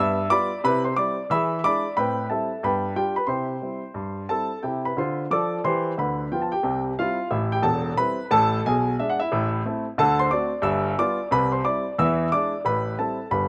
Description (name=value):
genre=jazz, stride piano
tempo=180 BPM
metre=4/4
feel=swing 62% on 8ths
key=C major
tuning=A4 = 440 Hz
part: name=warm grand piano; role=solo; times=0.0-13.5 s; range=E1 to E6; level=-24 LUFS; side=equal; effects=slapback echo
room=little or no reverb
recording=recorded outdoors, with no room sound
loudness=-24 LUFS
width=mono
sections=0.0-4.6 A section; 4.6-13.5 A section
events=none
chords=0.0 G7; 0.6 C; 1.3 E7; 2.0 Am7; 2.6 G7; 3.3 C; 6.0 Bdim/D; 6.6 C; 7.3 Am7; 8.6 G#dim/B; 9.3 Am; 10.0 D7; 10.6 G7; 11.3 C; 12.0 E7; 12.7 Am7